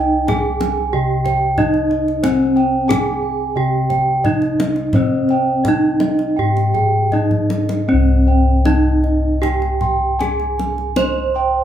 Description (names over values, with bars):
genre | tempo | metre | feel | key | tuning
Javanese gamelan | 78-92 BPM | 4/4 | straight | unclear | A4 = 445 Hz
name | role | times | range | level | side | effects
gamelan-type bronze metallophone | melody | 0.0-11.6 s | C4 to C5 | -19 LUFS | right 2 dB | none
gamelan-type bossed gongs | arpeggios | 0.0-11.6 s | Ab4-20c to C6 | -24 LUFS | right 1 dB | none
gamelan-type bronze metallophone | arpeggios | 0.0-11.6 s | C5 to C6 | -22 LUFS | right 2 dB | none
gamelan-type bossed gongs | bass | 0.0-11.6 s | C2 to C5 | -19 LUFS | left 2 dB | none
kendang | percussion | 0.3-11.1 s | none | -23 LUFS | left 2 dB | none
room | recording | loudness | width
moderate large studio reverb, RT60 1.0 s | band playing live in one room | -14 LUFS | side -10 dB against mid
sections
0.0-7.9 A section; 7.9-11.6 B section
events
drum fill 7.1-7.9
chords
none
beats
0.28 0.93 1.58 | 2.23 2.89 3.56 4.25 | 4.94 5.66 6.38 7.13 | 7.89 8.66 9.43 10.20 | 10.97